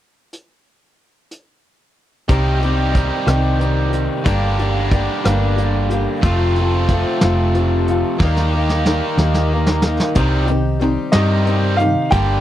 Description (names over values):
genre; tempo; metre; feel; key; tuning
folk rock and heartland rock; 61 BPM (dotted quarters); 6/8; straight; C dorian; A4 = 440 Hz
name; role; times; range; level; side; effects
soft brush drum kit; drums; 0.3-12.3 s; hi-hat, kick drum, rim click, snare drum; -18 LUFS; equal; none
picked swing-style acoustic guitar; accompaniment; 2.3-12.4 s; G2 to Bb4; -22 LUFS; left 5 dB; none
biting overdriven guitar; riff; 2.3-12.4 s; F2 to G4; -21 LUFS; right 2 dB; none
hollow-body short-scale fingered electric bass; bass; 2.3-12.4 s; F1 to G2; -18 LUFS; equal; none
bright concert grand piano; melody; 11.1-12.4 s; Eb5 to G5; -20 LUFS; right 2 dB; none
room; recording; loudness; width
small room ambience; dry, close 1970s-style studio recording; -14 LUFS; side -12 dB against mid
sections
0.3-2.3 A section; 2.3-10.2 B section; 10.2-12.4 C section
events
drum fill 8.2-10.2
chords
0.3 N.C.; 2.3 Cm; 4.3 Gm; 6.2 F; 8.2 Eb; 10.2 Cm